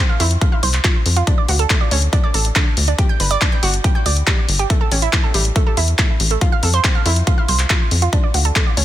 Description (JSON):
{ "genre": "uplifting trance", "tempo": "140 BPM", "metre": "4/4", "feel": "straight", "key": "unclear", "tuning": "A4 = 440 Hz", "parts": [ { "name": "analog pluck", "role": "arpeggios", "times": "0.0-8.8 s", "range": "A2 to G5", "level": "-22 LUFS", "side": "right 5 dB", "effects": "chorus, sidechain pumping, digital delay" }, { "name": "tight sequencer bass", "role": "bass", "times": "0.2-8.8 s", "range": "G1 to F2", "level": "-17 LUFS", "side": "equal", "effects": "tube saturation, sidechain pumping" }, { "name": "big-room dance drum kit", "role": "drums", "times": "0.2-8.8 s", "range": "handclaps, hi-hat", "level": "-20 LUFS", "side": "left 2 dB", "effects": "small room ambience" }, { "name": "electronic kick drum", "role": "drums", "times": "0.4-8.6 s", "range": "none", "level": "-17 LUFS", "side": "equal", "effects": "small room ambience" } ], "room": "digital ambience", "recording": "dense, heavily limited modern master", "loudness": "-14 LUFS", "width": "side -13 dB against mid", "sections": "0.0-8.8 A section", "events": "none", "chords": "0.0 F5; 1.3 D5; 3.0 G5; 4.7 A5; 6.4 F5; 8.1 D" }